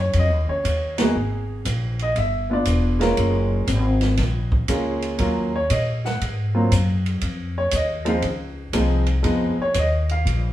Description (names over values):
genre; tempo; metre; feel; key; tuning
jazz piano trio; 119 BPM; 4/4; swing 68% on 8ths; Eb minor; A4 = 440 Hz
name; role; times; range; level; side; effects
clear concert grand piano; melody; 0.0-10.3 s; F3 to Gb5; -22 LUFS; equal; none
upright bass; bass; 0.0-10.5 s; Fb1 to Bb2; -22 LUFS; equal; none
open jazz drum kit; drums; 0.1-10.4 s; hi-hat, kick drum, ride cymbal, snare drum; -28 LUFS; right 2 dB; none
room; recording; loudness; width
moderate stone room reverb, RT60 0.9 s; band playing live in one room, small room ambience; -19 LUFS; side -13 dB against mid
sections
0.0-10.5 A section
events
band accent 0.9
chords
0.0 Eb7(no3); 1.2 Absus2; 2.2 G7; 3.2 Gbmaj7; 5.2 Ebm7; 6.2 Ab7(no3); 7.2 Dbmaj7; 9.2 Fm7b5